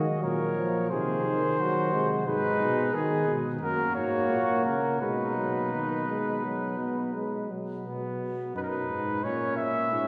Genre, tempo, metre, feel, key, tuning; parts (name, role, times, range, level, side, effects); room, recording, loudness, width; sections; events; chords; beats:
classical, imitative canzona for brass ensemble; 87 BPM; 4/4; straight; B major; A4 = 439 Hz
mellow trumpet; melody; 0.0-10.1 s; G#4 to E5; -33 LUFS; equal
warm flugelhorn; second line; 0.0-10.1 s; B3 to Bb4; -36 LUFS; equal
mellow trombone; accompaniment; 0.0-7.9 s; Eb3 to B3; -34 LUFS; equal
mellow bass trombone; bass; 0.0-10.1 s; F#2 to D#3; -34 LUFS; equal
wet cathedral reverb, RT60 4.7 s; heard from further back in the room; -28 LUFS; mono
0.0-7.9 A section; 7.9-10.1 B section
0.0 Ebm; 0.9 Cdim; 2.3 G#m; 3.6 F#; 5.0 B; 9.2 A#dim
0.23 0.91 1.59 | 2.27 2.94 3.62 4.31 | 5.02 5.73 6.44 7.15 | 7.86 8.56 9.24 9.92